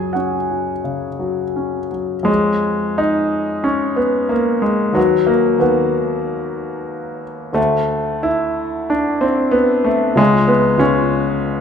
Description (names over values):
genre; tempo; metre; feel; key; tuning
classical, romantic character piece for solo piano; 91 BPM; 4/4; uneven beats, rubato; unclear; A4 = 440 Hz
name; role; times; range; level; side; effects
clear grand piano; solo; 0.0-11.6 s; C#2 to G#5; -15 LUFS; left 1 dB; none
room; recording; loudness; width
moderate recital hall reverb, RT60 1.6 s; minimal, uncompressed stereo recording; -15 LUFS; side -7 dB against mid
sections
0.0-2.3 A section; 2.3-11.6 B section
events
none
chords
0.0 F#5; 2.3 C#/E#; 5.0 B/D#; 7.6 D7; 10.2 C#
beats
0.17 0.86 1.56 | 2.28 3.00 3.67 4.32 | 4.97 5.62 6.27 6.92 | 7.57 8.26 8.92 9.55 | 10.19 10.83 11.45